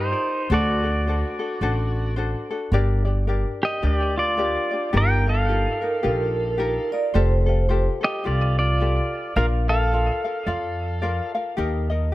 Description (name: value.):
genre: Hawaiian.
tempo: 108 BPM.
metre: 4/4.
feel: swing 59% on 8ths.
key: G minor.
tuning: A4 = 440 Hz.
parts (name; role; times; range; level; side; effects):
pedal steel guitar; melody; 0.0-11.3 s; Eb4 to G5; -24 LUFS; equal; tape echo.
ukulele; accompaniment; 0.0-12.1 s; D4 to F5; -28 LUFS; left 3 dB; none.
upright bass; bass; 0.0-12.1 s; F1 to G2; -22 LUFS; equal; none.
vibraphone with medium mallets; second line; 5.8-7.8 s; Bb4 to D5; -25 LUFS; right 3 dB; none.
room: light reverb, small room ambience.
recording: echo-heavy mix.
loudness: -20 LUFS.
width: side -16 dB against mid.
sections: 0.0-12.1 A section.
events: none.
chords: 0.5 D7; 2.7 Gm; 4.9 Ebadd9/G; 7.2 Fadd9; 9.4 Bb; 11.6 Eb.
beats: | 0.50 1.05 1.61 2.16 | 2.72 3.27 3.82 4.38 | 4.93 5.49 6.04 6.60 | 7.15 7.70 8.26 8.81 | 9.37 9.92 10.47 11.03 | 11.58 12.13.